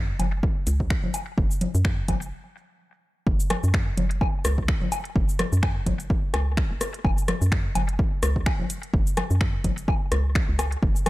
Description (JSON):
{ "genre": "minimal techno", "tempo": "127 BPM", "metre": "4/4", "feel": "swing 56% on 16ths", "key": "unclear", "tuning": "A4 = 440 Hz", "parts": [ { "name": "hollow knocking FM bass", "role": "bass", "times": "0.0-11.1 s", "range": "F#1 to F#2", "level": "-25 LUFS", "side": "equal", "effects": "sidechain pumping" }, { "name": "house drum kit", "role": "drums", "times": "0.2-11.1 s", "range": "finger snaps, hi-hat, shaker", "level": "-33 LUFS", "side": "left 1 dB", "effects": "overdrive, analog delay" }, { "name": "electronic congas, woodblock and rim click", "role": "percussion", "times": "0.2-11.1 s", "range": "none", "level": "-28 LUFS", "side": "left 2 dB", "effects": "overdrive, analog delay" }, { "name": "electronic kick drum", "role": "drums", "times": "0.4-10.9 s", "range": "none", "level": "-24 LUFS", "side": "equal", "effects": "overdrive" } ], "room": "little or no reverb", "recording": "echo-heavy mix", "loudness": "-22 LUFS", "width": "side -18 dB against mid", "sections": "0.0-3.3 A section; 3.3-11.1 B section", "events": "stop 2.3-3.3; drop 3.3-11.1", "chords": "none", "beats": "0.43 0.90 | 1.38 1.85 2.32 2.79 | 3.27 3.74 4.21 4.68 | 5.16 5.63 6.10 6.57 | 7.05 7.52 7.99 8.46 | 8.94 9.41 9.88 10.35 | 10.82" }